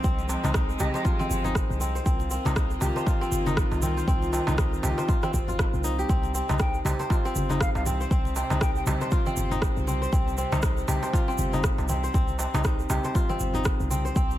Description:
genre	afro house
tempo	119 BPM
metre	4/4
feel	swing 58% on 16ths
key	C minor pentatonic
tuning	A4 = 440 Hz
part	clear studio string section	sustained chords	0.0-14.4 s	C3 to G4	-34 LUFS	equal	sidechain pumping
part	kora	arpeggios	0.0-14.4 s	C4 to C5	-30 LUFS	left 1 dB	sidechain pumping, digital delay
part	warm 808-style bass	bass	0.0-14.4 s	G1 to C2	-29 LUFS	equal	sidechain pumping
part	electronic kick drum	drums	0.0-14.3 s	none	-25 LUFS	equal	none
part	egg shaker	percussion	0.0-14.4 s	none	-39 LUFS	right 5 dB	none
part	congas	percussion	0.2-14.4 s	none	-32 LUFS	left 2 dB	none
part	darbuka	percussion	0.3-13.4 s	none	-35 LUFS	right 3 dB	none
part	electronic rim click	drums	0.5-13.8 s	none	-33 LUFS	right 1 dB	none
part	jazz flute	melody	0.8-1.0, 6.6-8.8 s	Eb5 to G5	-37 LUFS	left 2 dB	digital delay
room	studio ambience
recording	none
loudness	-23 LUFS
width	side -13 dB against mid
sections	0.0-14.4 A section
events	none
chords	0.0 Fm7; 2.1 Eb; 6.1 Cm

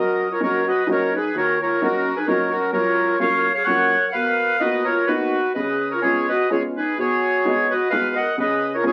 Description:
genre	musette waltz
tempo	128 BPM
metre	3/4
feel	swing 54% on 8ths, rubato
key	F# major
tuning	A4 = 440 Hz
part	accordion	melody	0.0-8.9 s	F#4 to F#5	-22 LUFS	equal	none
part	mellow alto flute	second line	0.0-8.9 s	C#4 to A#4	-28 LUFS	equal	none
part	warm upright piano	accompaniment	0.0-8.9 s	D#2 to F#4	-28 LUFS	equal	none
room	moderate club reverb, RT60 0.6 s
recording	very old 78 rpm record, vinyl crackle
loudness	-20 LUFS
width	mono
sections	0.0-8.9 A section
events	none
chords	0.0 F#6; 1.3 D#m7; 2.7 F#maj7; 4.1 Bmaj7; 5.6 C#7; 7.0 G#m7/B; 8.4 C#7

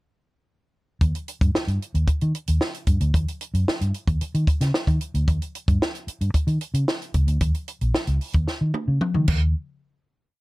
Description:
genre	funk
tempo	112 BPM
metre	4/4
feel	straight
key	Eb mixolydian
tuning	A4 = 440 Hz
part	vintage muted fingered electric bass	bass	1.0-9.5 s	Bb1 to Eb3	-21 LUFS	equal	none
part	compact cocktail drum kit	drums	1.0-9.4 s	crash cymbal, hi-hat, kick drum, snare drum, toms	-23 LUFS	equal	none
room	little or no reverb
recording	none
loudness	-21 LUFS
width	side -21 dB against mid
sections	1.0-9.5 breakdown; 9.5-10.4 final hit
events	drum fill 8.5-9.5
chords	none

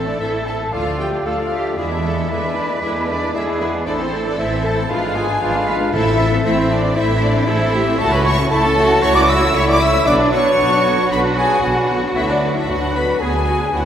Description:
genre	quick classical-period movement for symphony orchestra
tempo	115 BPM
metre	4/4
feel	straight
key	A minor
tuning	A4 = 440 Hz
part	rich chamber violin section	melody	0.0-13.8 s	C4 to A4	-28 LUFS	left 3 dB	none
part	mellow cor anglais	second line	0.0-13.8 s	B4 to E5	-27 LUFS	right 2 dB	none
part	mellow small flute group	second line	0.0-13.8 s	B4 to E6	-24 LUFS	left 1 dB	none
part	rich studio violin section	second line	0.0-13.8 s	B4 to E6	-24 LUFS	left 2 dB	none
part	warm clarinet	second line	0.0-13.8 s	D4 to A4	-27 LUFS	left 1 dB	none
part	rich chamber viola section	accompaniment	0.0-13.8 s	D3 to D4	-26 LUFS	right 2 dB	none
part	warm bassoon	accompaniment	0.0-13.8 s	F#3 to A3	-27 LUFS	right 2 dB	none
part	mellow French horn section	sustained chords	0.0-13.8 s	B3 to E5	-24 LUFS	left 2 dB	none
part	warm trumpet	stabs	0.0-13.8 s	B3 to E5	-25 LUFS	right 2 dB	none
part	rich chamber double bass section	bass	0.0-13.8 s	G#1 to E2	-23 LUFS	equal	none
part	rich studio cello section	bass	0.0-13.8 s	C4 to B4	-23 LUFS	right 1 dB	none
part	timpani	percussion	5.9-6.7 s	A2	-25 LUFS	left 2 dB	none
room	wet scoring stage reverb, RT60 2.1 s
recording	recorded in a church or concert hall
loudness	-15 LUFS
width	side -9 dB against mid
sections	0.0-13.8 A section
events	none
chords	0.0 Am; 0.7 Dm; 1.8 E7; 3.9 Am; 4.9 G#dim7; 5.9 Am; 8.0 A/C#; 10.1 Bm; 12.2 Bm/D

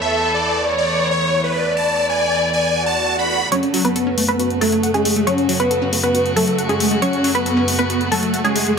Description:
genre	uplifting trance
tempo	137 BPM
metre	4/4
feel	straight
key	F# minor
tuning	A4 = 440 Hz
part	supersaw chords	melody	0.0-8.7 s	G#3 to B5	-19 LUFS	right 1 dB	phaser, low-pass filter, dub echo
part	dark studio violin section	second line	0.0-3.4 s	A4 to D5	-20 LUFS	left 2 dB	dub echo
part	rich chamber string section	sustained chords	0.0-8.8 s	E2 to F#4	-24 LUFS	equal	none
part	swell	sound effects	2.8-3.5 s	none	-24 LUFS	right 3 dB	none
part	analog pluck	second line	3.5-8.7 s	G#4 to C#5	-24 LUFS	right 1 dB	analog chorus
part	wide unison pluck	arpeggios	3.5-8.7 s	F#3 to F#5	-24 LUFS	left 3 dB	dub echo
part	electronic hi-hat	drums	3.5-8.8 s	none	-24 LUFS	left 2 dB	overdrive
room	light reverb, digital ambience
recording	none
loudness	-15 LUFS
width	side -6 dB against mid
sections	0.0-3.5 A section; 3.5-8.8 B section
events	filter sweep on supersaw synth 0.0-3.5, 3.5-8.8; swell 2.8-3.5; build-up 3.5-8.8; filter sweep on synth pluck 3.5-8.8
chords	0.0 Esus4; 3.5 F#m

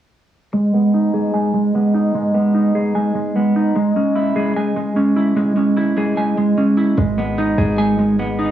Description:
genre	hip hop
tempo	149 BPM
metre	4/4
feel	half-time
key	G# minor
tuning	A4 = 439 Hz
part	semi-hollow electric guitar	accompaniment	0.5-8.5 s	G#3 to G#5	-18 LUFS	right 4 dB	low-pass filter, cassette tape
part	Celtic harp	arpeggios	0.5-8.5 s	G#3 to E4	-18 LUFS	left 2 dB	low-pass filter, cassette tape, analog delay
part	hard-hitting 808-style bass	bass	7.0-8.5 s	G#1	-22 LUFS	equal	none
room	moderate booth ambience, RT60 0.2 s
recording	home recording on cassette, small room ambience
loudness	-15 LUFS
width	side -11 dB against mid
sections	0.5-7.0 A section; 7.0-8.5 B section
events	filter sweep 0.5-7.0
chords	0.5 G#m; 3.8 C#m/G#; 7.0 G#m

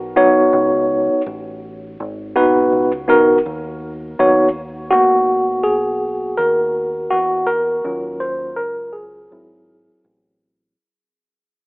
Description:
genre	hip hop, jazz-hop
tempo	82 BPM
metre	4/4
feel	swing 62% on 16ths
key	G# minor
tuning	A4 = 443 Hz
part	deep dub fingered electric bass	bass	0.0-10.7 s	G#1 to E2	-32 LUFS	equal	none
part	mellow tine electric piano	accompaniment	0.2-10.7 s	F#3 to C#5	-14 LUFS	equal	medium stereo tremolo, low-pass filter
room	moderate plate reverb, RT60 3.6 s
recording	telephone sound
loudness	-14 LUFS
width	side -39 dB against mid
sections	0.0-4.9 A section; 4.9-10.8 B section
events	fade-out 4.9-10.8; tine electric piano solo 4.9-10.8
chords	0.0 G#m7; 4.9 G#m9; 7.8 D#m7; 9.3 G#7b13

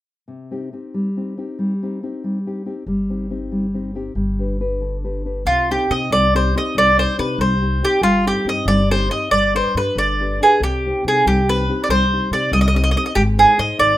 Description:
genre	italian folk, Italian serenade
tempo	93 BPM (dotted quarters)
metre	6/8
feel	straight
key	C harmonic minor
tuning	A4 = 441 Hz
part	nylon-string guitar	accompaniment	0.3-14.0 s	C3 to C5	-22 LUFS	left 1 dB	none
part	upright bass	bass	2.9-14.0 s	G1 to C3	-23 LUFS	equal	none
part	mandolin	melody	5.5-14.0 s	F4 to Eb5	-16 LUFS	right 1 dB	none
room	wet studio reverb, RT60 0.6 s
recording	rough home demo mix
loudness	-16 LUFS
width	side -14 dB against mid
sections	0.3-5.5 A section; 5.5-14.0 B section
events	none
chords	0.3 Cm; 2.9 Cm/G; 4.2 G; 5.5 Cm; 8.0 Cm/G; 9.3 G; 10.6 Cm; 13.2 Ab

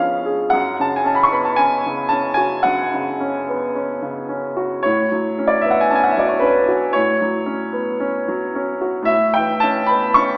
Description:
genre	classical, romantic nocturne for solo piano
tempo	56 BPM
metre	4/4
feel	rubato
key	F# minor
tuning	A4 = 440 Hz
part	warm baby grand piano	solo	0.0-10.4 s	E#2 to C#6	-18 LUFS	equal	none
room	wet scoring stage reverb, RT60 1.9 s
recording	heard from further back in the room, AM radio sound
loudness	-19 LUFS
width	mono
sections	0.0-10.4 A section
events	none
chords	0.0 C#7/E#; 0.5 F#5; 4.8 F#m/A; 9.1 A7

